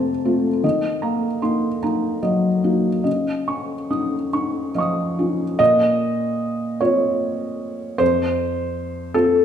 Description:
neoclassical minimalist piano; 49 BPM (dotted quarters); 6/8; uneven beats, rubato; Bb minor; A4 = 440 Hz
felt-muted upright piano; solo; 0.0-9.4 s; F2 to Eb6; -18 LUFS; equal
wet recital hall reverb, RT60 1.3 s; recorded in a church or concert hall; -18 LUFS; side -8 dB against mid
0.0-5.6 A section; 5.6-9.4 B section
0.0 F; 0.6 Ebm; 3.1 Dbadd9; 5.6 Bbmadd9; 8.0 F
| 0.63 1.82 | 3.06 4.32 | 5.59 6.81 | 8.00 9.15

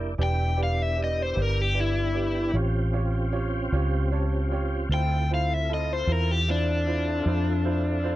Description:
blues; 51 BPM (dotted quarters); 12/8; straight; A4 = 440 Hz
clear grand piano; accompaniment; 0.0-8.2 s; E4 to A5; -34 LUFS; right 7 dB
tonewheel organ; sustained chords; 0.0-8.2 s; Bb3 to A4; -33 LUFS; equal; slow rotary speaker, chorus vibrato
vintage muted fingered electric bass; bass; 0.0-8.2 s; E1 to F2; -26 LUFS; equal
overdriven electric guitar; melody; 0.2-8.2 s; D4 to G5; -27 LUFS; left 3 dB
little or no reverb; dry, close 1970s-style studio recording; -23 LUFS; side -15 dB against mid
0.0-8.2 A section
overdriven electric guitar solo 0.0-8.2; grand piano fill 3.7-4.9
0.2 Em7; 2.5 A7alt; 4.9 Dm7
| 0.19 1.37 2.55 3.73 | 4.90 6.08 7.26

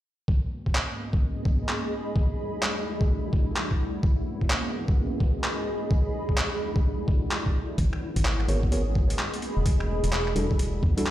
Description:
UK garage, two-step garage; 128 BPM; 4/4; swing 63% on 16ths; A4 = 440 Hz
soft string machine; sustained chords; 0.3-11.1 s; E2 to F#4; -34 LUFS; right 1 dB; phaser, ensemble chorus, sidechain pumping
electronic kick drum; drums; 0.3-10.9 s; -23 LUFS; equal; overdrive
granular cloud pad; texture; 1.1-11.1 s; E4 to B5; -33 LUFS; equal; built-in reverb, sidechain pumping
boom bap sampler-style drum kit; drums; 0.8-11.1 s; finger snaps, handclaps, hi-hat; -30 LUFS; equal; overdrive
organ-like FM bass; bass; 7.8-11.0 s; E1 to E2; -26 LUFS; equal
mellow tine electric piano; stabs; 8.5-11.0 s; G3 to C#5; -31 LUFS; equal; dub echo
light reverb; played on a big sound system in a bare room, stone room reverb; -24 LUFS; side -14 dB against mid
0.3-11.1 A section
filter sweep on string machine 0.3-11.1
0.3 G#m11; 2.2 Em11; 4.0 G#m11; 5.9 Em11; 7.8 G#m11; 9.7 Em11
| 0.28 0.75 1.22 1.69 | 2.16 2.63 3.09 3.56 | 4.03 4.50 4.97 5.44 | 5.91 6.38 6.84 7.31 | 7.78 8.25 8.72 9.19 | 9.66 10.13 10.59 11.06

